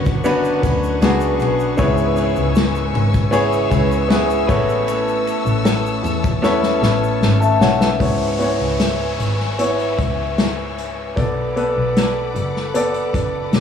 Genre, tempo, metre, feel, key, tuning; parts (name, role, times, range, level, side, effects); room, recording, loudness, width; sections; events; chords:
pop ballad; 77 BPM; 4/4; straight; A4 = 440 Hz
clear concert grand piano; accompaniment; 0.0-13.6 s; G#2 to A5; -19 LUFS; left 1 dB; analog delay
warm studio string section; sustained chords; 0.0-13.6 s; A4 to E6; -28 LUFS; left 5 dB
direct-recorded clean electric guitar; arpeggios; 0.0-8.5 s; C#3 to B4; -26 LUFS; right 3 dB; analog delay
rich double bass; bass; 0.0-13.6 s; E1 to E2; -22 LUFS; left 1 dB
unplugged drum kit; drums; 0.1-13.6 s; crash cymbal, hi-hat, kick drum, ride cymbal, snare drum; -21 LUFS; left 1 dB
egg shaker; percussion; 0.1-8.0 s; -45 LUFS; right 4 dB
downlifter; sound effects; 8.0-13.6 s; -32 LUFS; equal
light reverb, studio reverb; echo-heavy mix; -15 LUFS; side -8 dB against mid
0.0-8.0 A section; 8.0-13.6 B section
drum fill 6.4-8.0
0.0 Bmadd9; 1.8 C#m7; 4.5 Aadd9; 8.0 C#m7; 11.2 Bm7